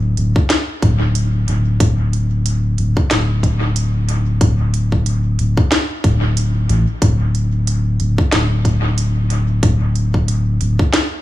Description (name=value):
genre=ambient dub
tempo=92 BPM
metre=4/4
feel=swing 57% on 16ths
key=unclear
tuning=A4 = 439 Hz
part: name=soft dub sub bass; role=bass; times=0.0-10.8 s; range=D1 to A1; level=-15 LUFS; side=equal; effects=none
part: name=organic electronic drum kit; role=drums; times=0.2-11.1 s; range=hi-hat, snare drum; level=-22 LUFS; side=equal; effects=dub echo
part: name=electronic kick drum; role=drums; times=0.4-10.9 s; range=none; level=-14 LUFS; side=equal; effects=none
room=digital ambience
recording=small room ambience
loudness=-14 LUFS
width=side -15 dB against mid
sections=0.0-11.2 A section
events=none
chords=none